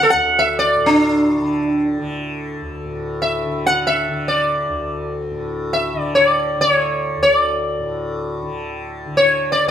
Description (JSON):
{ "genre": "indian classical, Hindustani", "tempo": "free time", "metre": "none", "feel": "none", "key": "unclear", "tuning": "A4 = 440 Hz", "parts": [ { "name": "sitar", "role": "melody", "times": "0.0-9.7 s", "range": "D4 to F#5", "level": "-16 LUFS", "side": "equal", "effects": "none" }, { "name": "tanpura", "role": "drone", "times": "0.0-9.7 s", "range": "D2 to D3", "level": "-25 LUFS", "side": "left 1 dB", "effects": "none" } ], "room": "moderate large studio reverb, RT60 0.9 s", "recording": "band playing live in one room", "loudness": "-16 LUFS", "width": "side -9 dB against mid", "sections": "0.0-2.8 A section; 2.8-9.7 A section", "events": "none", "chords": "none", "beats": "free time" }